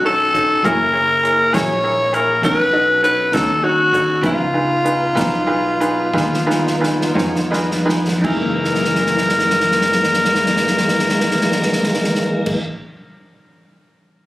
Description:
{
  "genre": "slow blues",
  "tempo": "53-67 BPM (dotted quarters)",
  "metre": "12/8",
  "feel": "straight",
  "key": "F# mixolydian",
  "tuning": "A4 = 437 Hz",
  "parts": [
    { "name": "bright upright piano", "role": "accompaniment", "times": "0.0-12.6 s", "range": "D#4 to G#5", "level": "-22 LUFS", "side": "right 2 dB", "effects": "none" },
    { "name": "tonewheel organ", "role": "sustained chords", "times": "0.0-12.6 s", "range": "E3 to A4", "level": "-24 LUFS", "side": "equal", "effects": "slow rotary speaker, overdrive, chorus vibrato" },
    { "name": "upright bass", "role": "bass", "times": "0.0-12.6 s", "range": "F#1 to E#2", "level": "-25 LUFS", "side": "equal", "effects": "none" },
    { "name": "growling tenor saxophone", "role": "melody", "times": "0.1-12.6 s", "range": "E#4 to C#5", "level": "-16 LUFS", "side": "left 1 dB", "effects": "none" },
    { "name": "swinging big-band drum kit", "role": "drums", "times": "0.3-12.7 s", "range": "crash cymbal, hi-hat, kick drum, snare drum", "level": "-24 LUFS", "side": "equal", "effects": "none" },
    { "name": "electric guitar through a small old amp", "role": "accompaniment", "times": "0.6-12.7 s", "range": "F#2 to G#4", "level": "-22 LUFS", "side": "left 2 dB", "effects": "tremolo" }
  ],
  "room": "light reverb",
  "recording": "recorded on a phone in the room, club reverb",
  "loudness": "-14 LUFS",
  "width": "side -16 dB against mid",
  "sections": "0.0-8.2 A section; 8.2-12.7 B section",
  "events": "slowing down 3.0-8.2; drum fill 6.1-8.2, 8.6-12.5; upright piano fill 7.2-8.2",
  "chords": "0.0 B9; 0.6 F#9; 2.4 B9; 4.2 C#9; 8.2 F#13"
}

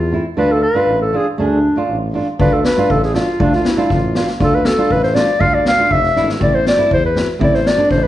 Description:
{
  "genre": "klezmer",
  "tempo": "119 BPM",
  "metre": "2/4",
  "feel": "straight",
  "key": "D dorian sharp4",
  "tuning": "A4 = 440 Hz",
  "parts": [
    { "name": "mellow clarinet", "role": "melody", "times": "0.0-8.1 s", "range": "D4 to F5", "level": "-16 LUFS", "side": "left 1 dB", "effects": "none" },
    { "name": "mellow tuba", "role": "bass", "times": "0.0-8.1 s", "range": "F1 to E2", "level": "-21 LUFS", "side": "equal", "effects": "none" },
    { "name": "nylon-string guitar", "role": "accompaniment", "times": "0.1-8.0 s", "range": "A3 to G#4", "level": "-19 LUFS", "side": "right 3 dB", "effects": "none" },
    { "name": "street-band drum kit", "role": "drums", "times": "2.4-8.0 s", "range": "kick drum, snare drum", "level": "-18 LUFS", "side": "left 2 dB", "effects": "none" }
  ],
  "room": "moderate recital hall reverb, RT60 1.4 s",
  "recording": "recorded in a church or concert hall, nothing above 10.8 kHz",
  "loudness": "-12 LUFS",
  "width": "side -13 dB against mid",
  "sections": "0.0-2.4 A section; 2.4-8.1 A section",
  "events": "drum fill 6.2",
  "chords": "0.4 Dm; 6.4 Am"
}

